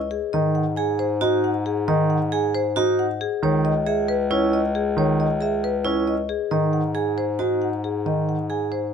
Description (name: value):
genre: classical, minimalist pattern music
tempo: 272 BPM (eighths)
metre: 7/8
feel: straight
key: unclear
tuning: A4 = 440 Hz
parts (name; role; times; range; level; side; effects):
- marimba with medium mallets; melody; 0.0-8.9 s; G#4 to G#5; -25 LUFS; left 8 dB; none
- clear bass clarinet; bass; 0.0-8.9 s; C#2 to G#2; -27 LUFS; left 1 dB; none
- warm grand piano; accompaniment; 0.3-8.3 s; D#3 to D#4; -24 LUFS; right 4 dB; none
- vibraphone with hard mallets; arpeggios; 0.8-8.8 s; E4 to G#4; -24 LUFS; right 6 dB; none
room: light reverb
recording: close, detailed microphones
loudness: -20 LUFS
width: side -7 dB against mid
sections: 0.0-8.9 A section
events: none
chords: 0.3 G#7(no3); 3.4 C#m; 6.5 G#7